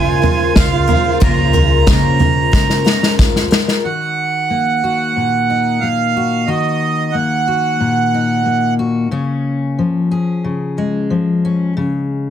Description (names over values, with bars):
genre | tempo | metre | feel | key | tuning
indie folk with a building arrangement | 91 BPM | 4/4 | straight | unclear | A4 = 440 Hz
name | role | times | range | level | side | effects
accordion | melody | 0.0-8.7 s | Eb5 to Bb5 | -17 LUFS | right 6 dB | none
dark cello | second line | 0.0-3.5 s | Db4 to F4 | -22 LUFS | right 11 dB | slapback echo
picked twelve-string acoustic guitar | accompaniment | 0.0-3.9 s | Db3 to Bb4 | -20 LUFS | left 8 dB | none
warm brass ensemble | sustained chords | 0.0-3.8 s | Db3 to C5 | -27 LUFS | right 2 dB | none
upright bass | bass | 0.0-3.5 s | Db2 to Db3 | -18 LUFS | left 1 dB | none
unplugged drum kit | drums | 0.2-3.8 s | kick drum, snare drum, toms | -14 LUFS | equal | none
tambourine | percussion | 0.6-3.3 s | none | -28 LUFS | left 20 dB | none
fingerpicked steel-string acoustic guitar | accompaniment | 3.8-12.3 s | Bb2 to Ab4 | -17 LUFS | left 3 dB | none
room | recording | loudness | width
light reverb | dense, heavily limited modern master | -13 LUFS | side -10 dB against mid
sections
0.0-3.8 A section; 3.8-12.3 B section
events
drum fill 2.5-3.8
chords
0.0 Bbm7/Db; 3.8 Ebm; 9.1 Db